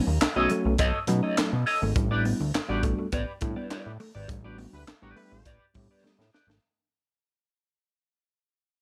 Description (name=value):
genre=funk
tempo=103 BPM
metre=4/4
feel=straight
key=unclear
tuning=A4 = 440 Hz
part: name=mellow electric guitar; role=riff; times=0.0-6.6 s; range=F#3 to B3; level=-35 LUFS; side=equal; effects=none
part: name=tine electric piano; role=stabs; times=0.0-6.2 s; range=F#3 to G4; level=-33 LUFS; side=equal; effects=medium tremolo
part: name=clean electric guitar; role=accompaniment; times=0.1-6.5 s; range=G4 to D#5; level=-32 LUFS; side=equal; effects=wah
part: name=fat analog bass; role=bass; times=0.1-6.6 s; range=G#1 to B2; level=-31 LUFS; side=equal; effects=none
part: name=crisp fusion drum kit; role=drums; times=0.2-6.6 s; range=handclaps, hi-hat, kick drum, snare drum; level=-32 LUFS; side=equal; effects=none
part: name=clear horn section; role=second line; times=4.7-5.5 s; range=G3 to B4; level=-60 LUFS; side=equal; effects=none
room=light reverb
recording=none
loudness=-26 LUFS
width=mono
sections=0.0-6.6 A section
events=fade-out 0.0-6.6; band accent 4.3-6.6; drum fill 6.0-6.6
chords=0.0 B9; 2.0 A9sus4